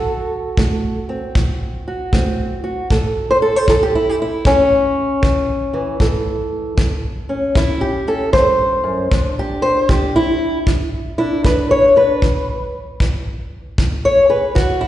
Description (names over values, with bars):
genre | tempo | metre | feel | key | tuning
acoustic country blues, solo or duo | 77 BPM | 4/4 | swing 65% on 8ths | A mixolydian | A4 = 439 Hz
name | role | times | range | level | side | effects
fingerpicked old ladder-braced acoustic guitar | melody | 0.0-14.9 s | E2 to C#5 | -16 LUFS | equal | slapback echo
kick drum | drums | 0.6-14.8 s | none | -18 LUFS | equal | none
room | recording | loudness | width
light reverb | live gig heard through the venue's PA, recital hall reverb, nothing above 10.8 kHz | -14 LUFS | side -13 dB against mid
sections
0.0-14.9 A section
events
steel-string acoustic guitar solo 0.0-14.9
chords
0.0 D7 (rootless); 2.9 A; 9.1 E7(no3)